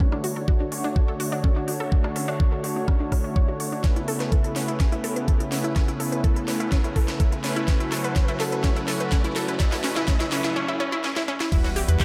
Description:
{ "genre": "progressive house", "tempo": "125 BPM", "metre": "4/4", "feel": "straight", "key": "unclear", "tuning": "A4 = 440 Hz", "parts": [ { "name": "warm analog pad", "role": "sustained chords", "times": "0.0-12.0 s", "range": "C#3 to C#5", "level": "-34 LUFS", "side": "equal", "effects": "chorus, sidechain pumping" }, { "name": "analog pluck", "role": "arpeggios", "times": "0.0-12.0 s", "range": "C#4 to C#5", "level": "-32 LUFS", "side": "equal", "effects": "chorus, sidechain pumping, diffuse ambient delay" }, { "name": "soft supersaw", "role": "stabs", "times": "0.0-12.0 s", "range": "G3 to C#5", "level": "-33 LUFS", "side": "equal", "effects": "sidechain pumping, low-pass filter, diffuse ambient delay" }, { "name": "tight sequencer bass", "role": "bass", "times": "0.0-12.0 s", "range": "E1 to E2", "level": "-29 LUFS", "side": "equal", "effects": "none" }, { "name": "electronic kick drum", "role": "drums", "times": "0.0-12.0 s", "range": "none", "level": "-23 LUFS", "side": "equal", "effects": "small room ambience" }, { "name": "riser and sub drop", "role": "sound effects", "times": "3.2-12.0 s", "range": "none", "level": "-41 LUFS", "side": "equal", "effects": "none" }, { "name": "pop drum kit", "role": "drums", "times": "0.1-12.0 s", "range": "crash cymbal, handclaps, hi-hat, rim click, snare drum", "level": "-35 LUFS", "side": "equal", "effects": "high-pass filter on snare, small room ambience, sidechain pumping on hats, high-pass filter on hats, sidechain pumping on cymbals, high-pass filter on cymbals" }, { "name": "tight metal drum kit", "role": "drums", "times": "11.5-12.0 s", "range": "hi-hat, snare drum", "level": "-44 LUFS", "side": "equal", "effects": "none" } ], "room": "moderate plate reverb, RT60 2.0 s", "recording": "dreamy mix soaked in reverb", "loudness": "-24 LUFS", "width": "mono", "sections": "0.0-11.5 A section", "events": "build-up 0.0-11.5; filter sweep on synth arpeggio sound 0.0-11.5; filter sweep on supersaw synth 0.0-11.5; drum fill 3.8-10.6, 11.0-11.5; break 10.6-11.5; impact 11.5-12.0", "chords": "0.0 Dmaj7/E; 3.8 Aadd9/E; 7.7 F#m/E; 11.5 Emadd9", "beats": "| 0.00 0.48 0.96 1.44 | 1.92 2.40 2.88 3.36 | 3.84 4.32 4.80 5.28 | 5.76 6.24 6.72 7.20 | 7.68 8.16 8.64 9.12 | 9.60 10.08 10.56 11.04 | 11.52 12.00" }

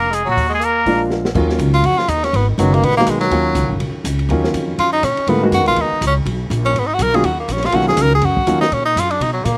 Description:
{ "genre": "jazz, small-group swing and bop", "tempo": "244 BPM", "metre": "4/4", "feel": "swing 59% on 8ths", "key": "Eb minor", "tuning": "A4 = 439 Hz", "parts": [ { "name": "trumpet with straight mute", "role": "melody", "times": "0.0-1.0 s", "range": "Gb4 to Bb4", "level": "-19 LUFS", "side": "equal", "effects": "none" }, { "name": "clear tenor saxophone", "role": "second line", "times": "0.0-9.6 s", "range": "Eb3 to Bb4", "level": "-19 LUFS", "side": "equal", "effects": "none" }, { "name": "warm grand piano", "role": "accompaniment", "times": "0.0-8.6 s", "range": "D3 to Gb4", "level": "-21 LUFS", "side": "equal", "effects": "slapback echo" }, { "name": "upright bass", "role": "bass", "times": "0.0-9.6 s", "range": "F1 to B2", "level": "-22 LUFS", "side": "equal", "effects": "none" }, { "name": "open jazz drum kit", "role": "drums", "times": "0.1-9.5 s", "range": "crash cymbal, hi-hat, kick drum, ride cymbal, snare drum", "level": "-28 LUFS", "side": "equal", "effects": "none" } ], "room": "little or no reverb", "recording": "recorded outdoors, with no room sound", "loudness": "-16 LUFS", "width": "mono", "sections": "0.0-1.4 A section; 1.4-9.6 B section", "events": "drum fill 1.1; tenor saxophone solo 1.4-9.6", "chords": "0.4 Eb5; 0.9 Bb7; 1.4 Ebm7; 2.3 Abm7; 3.3 Ebm7; 5.3 Abm7; 7.2 Ebm7", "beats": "0.13 | 0.38 0.62 0.87 1.11 | 1.36 1.60 1.85 2.09 | 2.34 2.58 2.83 3.08 | 3.32 3.57 3.81 4.06 | 4.30 4.55 4.79 5.04 | 5.29 5.53 5.78 6.02 | 6.27 6.51 6.76 7.00 | 7.25 7.50 7.74 7.99 | 8.23 8.48 8.72 8.97 | 9.21 9.46" }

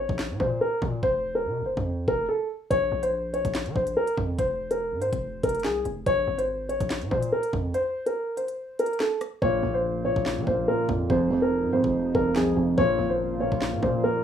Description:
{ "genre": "hip hop, drill", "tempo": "143 BPM", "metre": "4/4", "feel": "half-time", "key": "Bb minor", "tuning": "A4 = 437 Hz", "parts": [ { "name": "dark concert grand piano", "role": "melody", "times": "0.0-14.2 s", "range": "Ab4 to Db5", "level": "-25 LUFS", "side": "left 1 dB", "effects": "slapback echo" }, { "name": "distorted 808-style bass", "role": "bass", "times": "0.0-14.0 s", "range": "F1 to F3", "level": "-32 LUFS", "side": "equal", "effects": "distortion" }, { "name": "drill drum kit", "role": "drums", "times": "0.1-13.9 s", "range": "hi-hat, kick drum, rim click, snare drum", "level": "-32 LUFS", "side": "equal", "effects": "none" }, { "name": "felt-muted upright piano", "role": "accompaniment", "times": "9.4-14.2 s", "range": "F2 to Bb2", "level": "-26 LUFS", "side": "right 3 dB", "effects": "none" }, { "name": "sweeping resonant pad", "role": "sustained chords", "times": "9.4-14.2 s", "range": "C3 to F4", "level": "-34 LUFS", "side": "left 2 dB", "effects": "lush chorus" } ], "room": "light reverb", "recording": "rough home demo mix, studio ambience", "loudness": "-23 LUFS", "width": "side -9 dB against mid", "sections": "0.0-14.2 A section", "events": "break 0.0-2.7, 7.7-9.4; hi-hats muted 9.4-14.2", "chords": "0.0 Bbm; 1.0 F5; 2.7 Bbm; 4.4 F5; 6.1 Bbm; 7.7 N.C.; 9.4 Bbm; 11.1 Fm7; 12.8 Bbm", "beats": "0.19 0.61 | 1.03 1.45 1.87 2.29 | 2.71 3.13 3.55 3.97 | 4.39 4.80 5.22 5.64 | 6.06 6.48 6.90 7.32 | 7.74 8.16 8.58 9.00 | 9.42 9.84 10.26 10.68 | 11.10 11.52 11.94 12.36 | 12.78 13.20 13.62 14.04" }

